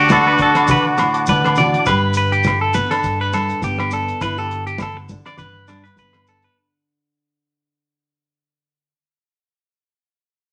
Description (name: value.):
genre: highlife guitar band.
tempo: 102 BPM.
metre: 4/4.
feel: swing 54% on 16ths.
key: G major.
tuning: A4 = 440 Hz.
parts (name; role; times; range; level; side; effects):
trumpet with straight mute; melody; 0.0-1.3 s; F#4; -20 LUFS; equal; none.
raspy alto saxophone; second line; 0.0-1.3 s; D4; -26 LUFS; equal; none.
nylon-string guitar; accompaniment; 0.0-8.9 s; G2 to G4; -28 LUFS; equal; none.
mellow tonewheel organ; sustained chords; 0.0-1.8 s; F#5 to D6; -24 LUFS; equal; slow rotary speaker.
clean electric guitar; arpeggios; 0.0-6.6 s; D4 to D5; -21 LUFS; equal; none.
fingered electric bass; bass; 0.0-6.5 s; G1 to G2; -27 LUFS; equal; none.
cloth-damped thuddy drum kit; drums; 0.1-6.6 s; hi-hat, kick drum, rim click; -30 LUFS; equal; none.
agogo bells; percussion; 0.1-6.3 s; none; -27 LUFS; equal; none.
congas; percussion; 0.1-6.1 s; none; -24 LUFS; equal; none.
maracas; percussion; 0.1-6.4 s; none; -39 LUFS; equal; none.
room: wet studio reverb, RT60 0.8 s.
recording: none.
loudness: -17 LUFS.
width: mono.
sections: 0.0-1.9 A section; 1.9-6.6 B section.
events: fade-out 1.9-6.6.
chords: 0.0 D; 1.9 G.